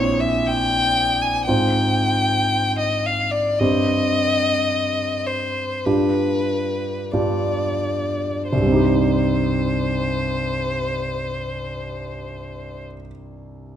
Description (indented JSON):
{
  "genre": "classical, romantic duo for violin and grand piano",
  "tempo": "41-60 BPM",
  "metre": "4/4",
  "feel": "rubato",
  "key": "C minor",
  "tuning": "A4 = 439 Hz",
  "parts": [
    { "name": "rich violin", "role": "melody", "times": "0.0-12.8 s", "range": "B4 to Ab5", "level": "-22 LUFS", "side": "left 2 dB", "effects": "none" },
    { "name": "warm concert grand piano", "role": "accompaniment", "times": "0.0-13.8 s", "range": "Bb1 to C5", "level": "-21 LUFS", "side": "right 1 dB", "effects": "none" }
  ],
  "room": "moderate recital hall reverb, RT60 1.6 s",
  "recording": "close, detailed microphones",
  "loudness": "-18 LUFS",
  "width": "side -10 dB against mid",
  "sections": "0.0-8.5 A section; 8.5-13.8 B section",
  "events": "slowing down 0.0-8.5",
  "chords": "0.0 C7/Bb; 1.5 Fm/Ab; 3.6 Cm/G; 5.9 G7; 8.5 Cm"
}